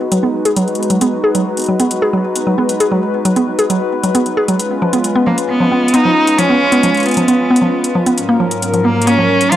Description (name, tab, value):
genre	IDM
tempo	134 BPM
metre	4/4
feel	straight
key	G# dorian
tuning	A4 = 442 Hz
part	hollow soft pad	sustained chords	0.0-9.6 s	G#2 to B4	-18 LUFS	left 1 dB	chorus
part	mallet-like synth pluck	arpeggios	0.1-9.6 s	E#3 to G#4	-15 LUFS	equal	chorus, cassette tape, analog delay
part	electronic hi-hat	drums	0.1-9.6 s	none	-22 LUFS	left 1 dB	none
part	rich cello	melody	5.3-9.6 s	A#3 to E#4	-14 LUFS	right 1 dB	vintage 12-bit sampler grit, tape echo
room	light reverb, digital ambience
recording	dry, gritty hardware recording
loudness	-11 LUFS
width	side -12 dB against mid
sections	0.0-9.6 A section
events	none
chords	0.0 G#m7; 4.6 C#7; 8.2 F#maj7/G#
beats	0.12 0.56 | 1.01 1.46 1.91 2.36 | 2.80 3.25 3.70 4.15 | 4.59 5.04 5.49 5.94 | 6.39 6.83 7.28 7.73 | 8.18 8.62 9.07 9.52